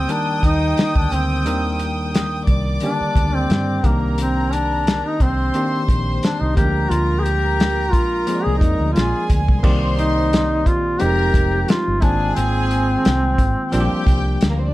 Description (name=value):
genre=lush 1970s-style soul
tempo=88 BPM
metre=4/4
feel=swing 54% on 16ths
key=C minor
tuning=A4 = 440 Hz
part: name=warm duduk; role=melody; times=0.0-14.4 s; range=Bb3 to Ab4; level=-21 LUFS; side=equal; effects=none
part: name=warm studio violin section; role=second line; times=0.0-14.7 s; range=Bb3 to Eb6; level=-27 LUFS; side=right 1 dB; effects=none
part: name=bell-like tine electric piano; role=accompaniment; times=0.0-14.7 s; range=D3 to D5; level=-24 LUFS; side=left 1 dB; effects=fast stereo tremolo
part: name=vintage muted fingered electric bass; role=bass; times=0.0-14.7 s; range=F1 to G2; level=-21 LUFS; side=equal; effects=none
part: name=warm soul drum kit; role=drums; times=0.1-14.6 s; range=crash cymbal, hi-hat, kick drum, snare drum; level=-18 LUFS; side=equal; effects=none
room=light reverb, small room ambience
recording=dark, warm production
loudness=-16 LUFS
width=side -17 dB against mid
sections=0.0-9.6 A section; 9.6-14.7 B section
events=duduk solo 0.0-9.6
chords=0.0 Ebmaj7; 3.8 Cm9; 6.6 Bb7; 9.6 Cm9; 11.0 Fm9; 12.0 Ab69; 13.7 Gm7/Bb